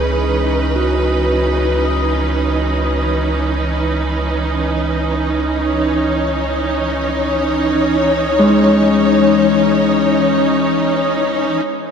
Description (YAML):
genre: ambient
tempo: free time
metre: none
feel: none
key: C# minor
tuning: A4 = 440 Hz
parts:
  - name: rich symphonic string section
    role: sustained chords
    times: 0.0-11.9 s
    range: E3 to C#5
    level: -16 LUFS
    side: right 1 dB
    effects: none
  - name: Celtic harp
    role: arpeggios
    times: 0.0-11.7 s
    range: G#3 to D#6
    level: -18 LUFS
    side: left 4 dB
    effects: tape echo
  - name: warm sub bass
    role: bass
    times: 0.0-11.6 s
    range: C#2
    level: -22 LUFS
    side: right 1 dB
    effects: none
room: wet cathedral reverb, RT60 5.7 s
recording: in a vast, echoing space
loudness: -13 LUFS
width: side -6 dB against mid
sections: 0.0-11.7 A section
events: fade-out on sub bass 0.0-11.7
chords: 0.0 C#m9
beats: free time